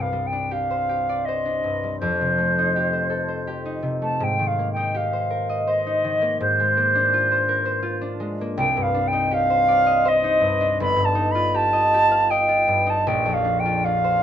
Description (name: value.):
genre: classical, impressionist duo for flute and harp.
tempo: 80 BPM.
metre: 3/4.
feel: rubato.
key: C minor.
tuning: A4 = 441 Hz.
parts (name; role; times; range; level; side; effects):
silver concert flute; melody; 0.0-14.2 s; C5 to B5; -20 LUFS; equal; none.
concert harp; accompaniment; 0.0-14.2 s; G1 to G5; -24 LUFS; equal; none.
room: light reverb.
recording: none.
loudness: -19 LUFS.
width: side -9 dB against mid.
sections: 0.0-14.2 A section.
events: none.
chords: 0.0 Cmadd9; 2.0 F9; 4.2 Abmaj9; 6.4 Bb9/Ab; 8.6 Cmadd9; 10.8 Gaug7; 13.1 Bbadd9.